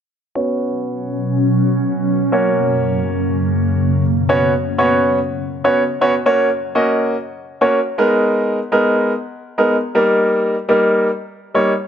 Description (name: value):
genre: pop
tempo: 122 BPM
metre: 4/4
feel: straight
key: unclear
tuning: A4 = 441 Hz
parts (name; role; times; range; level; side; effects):
- clear baby grand piano; accompaniment; 0.4-11.7 s; G3 to D#5; -15 LUFS; equal; low-pass filter
- ethereal airy pad; sustained chords; 1.0-4.3 s; F#2 to C#4; -18 LUFS; equal; ensemble chorus, built-in reverb, phaser, low-pass filter
room: moderate spring reverb, RT60 2.1 s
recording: none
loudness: -14 LUFS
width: side -8 dB against mid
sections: 0.4-4.3 A section; 4.3-11.9 B section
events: filter sweep 0.4-4.3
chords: 0.4 Bsus2; 2.3 F#; 4.0 Bsus2; 6.3 F#; 8.0 G#madd9; 9.9 D#